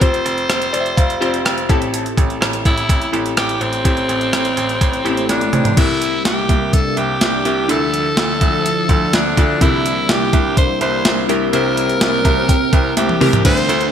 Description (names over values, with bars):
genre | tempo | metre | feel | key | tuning
1980s-style pop | 125 BPM | 4/4 | straight | unclear | A4 = 440 Hz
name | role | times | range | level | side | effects
raspy alto saxophone | melody | 0.0-13.9 s | C4 to C5 | -19 LUFS | left 1 dB | digital delay
glassy digital keys | accompaniment | 0.0-13.9 s | A2 to Bb5 | -21 LUFS | left 2 dB | chorus
bright baby grand piano | bass | 0.0-13.9 s | F1 to D2 | -23 LUFS | right 3 dB | none
clean 12-bit digital drum machine | drums | 0.0-13.9 s | crash cymbal, hi-hat, kick drum, rim click, snare drum, toms | -17 LUFS | equal | gated reverb
mellow synth brass | stabs | 5.2-5.7 s | A3 to C5 | -25 LUFS | right 3 dB | chorus
sweeping resonant pad | sustained chords | 5.8-13.9 s | C3 to E5 | -22 LUFS | equal | chorus
overdriven semi-hollow guitar | accompaniment | 13.4-13.9 s | D3 to D4 | -26 LUFS | right 5 dB | analog chorus
room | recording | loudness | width
moderate lush hall reverb, RT60 1.8 s | bright 1980s-style digital production | -13 LUFS | side -8 dB against mid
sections
0.0-5.8 A section; 5.8-13.5 B section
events
synth keys fill 0.5-1.9, 12.0-13.5; band accent 3.9-5.8; drum fill 5.3-5.8, 13.0-13.5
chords
0.0 Fsus2; 1.7 Am7; 5.8 C7; 7.7 Dmadd9; 9.6 C7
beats
| 0.01 0.49 0.97 1.45 | 1.93 2.41 2.89 3.37 | 3.85 4.33 4.81 5.29 | 5.77 6.25 6.73 7.21 | 7.69 8.17 8.65 9.13 | 9.61 10.09 10.57 11.05 | 11.53 12.01 12.49 12.97 | 13.45